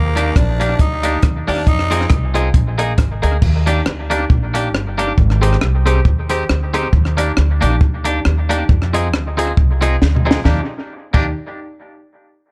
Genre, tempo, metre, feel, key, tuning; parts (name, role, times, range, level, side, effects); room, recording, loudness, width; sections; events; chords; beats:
ska; 137 BPM; 4/4; swing 56% on 8ths; Eb major; A4 = 438 Hz
growling tenor saxophone; melody; 0.0-2.1 s; Bb3 to Eb4; -25 LUFS; equal; analog delay
upright bass; bass; 0.0-11.3 s; G1 to F2; -20 LUFS; equal
twangy electric guitar; accompaniment; 0.2-11.3 s; Bb3 to Ab4; -25 LUFS; equal; analog delay
dark upright piano; stabs; 0.2-11.3 s; Eb4 to Eb5; -27 LUFS; equal; analog delay
compact cocktail drum kit; drums; 0.2-11.2 s; crash cymbal, hi-hat, kick drum, rim click, snare drum, toms; -19 LUFS; equal
light reverb; -16 LUFS; mono
0.0-3.4 A section; 3.4-10.5 B section; 10.5-12.2 C section
drum fill 10.0-10.5
0.0 Ebmaj7; 1.7 Fm7; 2.5 Bb7sus4; 3.4 Ebmaj7; 5.2 Abmaj7; 6.9 Ebmaj7; 8.7 Fm7; 10.5 Ebmaj7
0.35 0.79 1.23 | 1.67 2.11 2.54 2.98 | 3.42 3.86 4.30 4.74 | 5.17 5.61 6.05 6.49 | 6.93 7.37 7.81 8.25 | 8.69 9.13 9.57 10.01 | 10.45 10.89